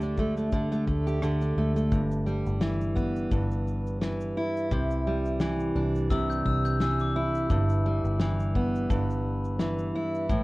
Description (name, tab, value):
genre	acoustic pop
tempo	86 BPM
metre	4/4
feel	swing 55% on 16ths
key	G major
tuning	A4 = 439 Hz
part	fingerpicked steel-string acoustic guitar	accompaniment	0.0-10.4 s	G2 to G4	-27 LUFS	right 1 dB	none
part	vintage muted fingered electric bass	bass	0.0-10.4 s	G1 to D2	-30 LUFS	equal	tube saturation
part	natural country drum kit	drums	0.0-10.4 s	kick drum, rim click, shaker, snare drum	-30 LUFS	left 1 dB	none
part	glockenspiel with hard plastic mallets	second line	6.1-7.5 s	D6 to G6	-34 LUFS	left 3 dB	none
room	light reverb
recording	worn, warbling old tape, cassette tape, warbly pitch drift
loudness	-25 LUFS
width	side -21 dB against mid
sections	0.0-1.9 A section; 1.9-10.4 B section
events	none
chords	0.0 Dsus4; 1.9 G6; 4.7 Cadd9; 7.5 G6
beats	0.53 1.23 | 1.92 2.62 3.32 4.02 | 4.71 5.41 6.11 6.81 | 7.50 8.20 8.90 9.60 | 10.30